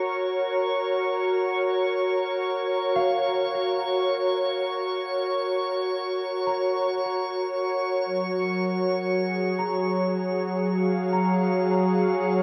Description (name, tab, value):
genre	ambient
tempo	free time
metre	none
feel	none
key	F# major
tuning	A4 = 440 Hz
part	warm analog pad	sustained chords	0.0-12.4 s	F#3 to E#5	-26 LUFS	equal	subtle chorus
part	drifting glass-harmonics texture	texture	0.0-12.4 s	C#6	-35 LUFS	equal	chorus, built-in reverb
part	concert harp	arpeggios	3.0-12.4 s	E#5 to A#5	-35 LUFS	equal	tape echo
room	wet cathedral reverb, RT60 5.1 s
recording	in a vast, echoing space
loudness	-25 LUFS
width	mono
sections	0.0-12.4 A section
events	fade-out on synth texture 0.0-12.4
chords	0.0 F#; 8.0 C#/F#